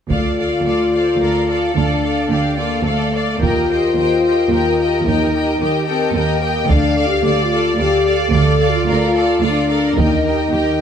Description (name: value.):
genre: cinematic, epic orchestral film score.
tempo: 110 BPM.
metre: 3/4.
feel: straight.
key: D phrygian.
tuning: A4 = 440 Hz.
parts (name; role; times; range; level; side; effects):
warm symphonic violin section; second line; 0.1-10.8 s; Eb5 to G5; -23 LUFS; left 2 dB; none.
rich symphonic viola section; accompaniment; 0.1-10.8 s; G4 to D5; -23 LUFS; right 1 dB; none.
warm French horn section; sustained chords; 0.1-10.8 s; A3 to A4; -18 LUFS; left 3 dB; none.
warm symphonic cello section; bass; 0.1-10.8 s; D2 to Eb2; -21 LUFS; right 3 dB; none.
warm symphonic double bass section; bass; 0.1-10.4 s; D2 to Eb2; -21 LUFS; right 4 dB; none.
taiko ensemble; drums; 0.1-10.8 s; none; -22 LUFS; equal; none.
warm studio violin section; melody; 0.7-10.8 s; F4 to G5; -25 LUFS; left 3 dB; none.
room: moderate scoring stage reverb, RT60 1.9 s.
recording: none.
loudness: -14 LUFS.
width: side -8 dB against mid.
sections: 0.1-10.8 A section.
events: none.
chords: 0.1 Dm; 3.4 Eb; 6.7 Dm; 10.0 Eb.